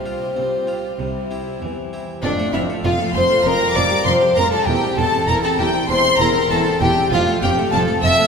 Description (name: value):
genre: classical, baroque-style concerto movement with solo episodes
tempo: 98 BPM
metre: 4/4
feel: straight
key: F major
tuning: A4 = 439 Hz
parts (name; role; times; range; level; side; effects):
- dark violin; melody; 0.0-8.3 s; D4 to E5; -20 LUFS; left 2 dB; none
- warm studio violin section; melody; 0.0-8.3 s; E4 to E6; -23 LUFS; left 2 dB; none
- warm chamber violin section; second line; 0.0-8.3 s; C4 to E6; -24 LUFS; left 2 dB; none
- dark studio viola section; accompaniment; 0.0-8.3 s; F3 to E4; -26 LUFS; right 1 dB; none
- harpsichord; accompaniment; 0.0-8.3 s; E2 to F5; -28 LUFS; right 1 dB; none
- dark chamber double bass section; bass; 0.0-8.1 s; E1 to C3; -26 LUFS; right 3 dB; none
- warm studio cello section; bass; 0.0-8.1 s; E2 to C4; -26 LUFS; right 2 dB; none
room: wet concert hall reverb, RT60 2.2 s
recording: minimal, uncompressed stereo recording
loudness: -15 LUFS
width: side -6 dB against mid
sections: 0.0-2.2 A section; 2.2-8.3 B section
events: none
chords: 0.0 Csus4; 1.0 C; 2.2 F; 3.5 Gm7/F; 4.7 C/E; 7.1 F